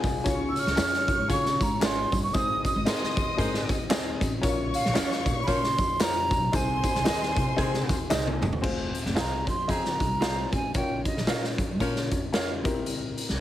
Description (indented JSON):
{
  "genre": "uptempo 1960s-style soul",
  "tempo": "114 BPM",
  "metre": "4/4",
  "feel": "swing 59% on 8ths",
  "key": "Ab major",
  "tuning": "A4 = 443 Hz",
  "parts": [
    { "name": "warm upright piano", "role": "accompaniment", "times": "0.0-13.3 s", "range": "C4 to Eb5", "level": "-32 LUFS", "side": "left 3 dB", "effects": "none" },
    { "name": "upright bass", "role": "bass", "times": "0.0-13.4 s", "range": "Fb1 to Db3", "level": "-32 LUFS", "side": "equal", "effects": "none" },
    { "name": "raw garage drum kit", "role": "drums", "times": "0.0-13.3 s", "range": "crash cymbal, hi-hat, kick drum, snare drum, toms", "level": "-28 LUFS", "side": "equal", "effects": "none" },
    { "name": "tambourine and handclaps", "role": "percussion", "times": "0.0-8.5 s", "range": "none", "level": "-40 LUFS", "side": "left 3 dB", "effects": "none" },
    { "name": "warm studio string section", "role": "second line", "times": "0.3-8.4 s", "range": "C5 to Eb6", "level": "-36 LUFS", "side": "left 1 dB", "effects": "none" },
    { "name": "breathy hollow jazz flute", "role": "melody", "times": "0.5-11.6 s", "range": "Eb5 to F6", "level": "-29 LUFS", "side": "right 2 dB", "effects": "plate reverb" },
    { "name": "electric guitar through a small old amp", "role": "stabs", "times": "0.8-12.5 s", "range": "C4 to F5", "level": "-35 LUFS", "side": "right 6 dB", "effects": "spring reverb, plate reverb" },
    { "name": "clear saxophone section", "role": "second line", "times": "1.3-12.0 s", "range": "Eb3 to Db5", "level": "-35 LUFS", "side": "equal", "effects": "plate reverb" }
  ],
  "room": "light reverb",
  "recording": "heavily compressed radio sound",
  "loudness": "-24 LUFS",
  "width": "side -13 dB against mid",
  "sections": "0.0-8.6 A section; 8.6-13.4 B section",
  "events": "drum fill 8.1-8.6",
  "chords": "0.3 Db; 2.3 Ab; 4.4 Bbm; 6.5 Ab/C; 8.6 Fm; 10.8 Bbm; 12.6 C7"
}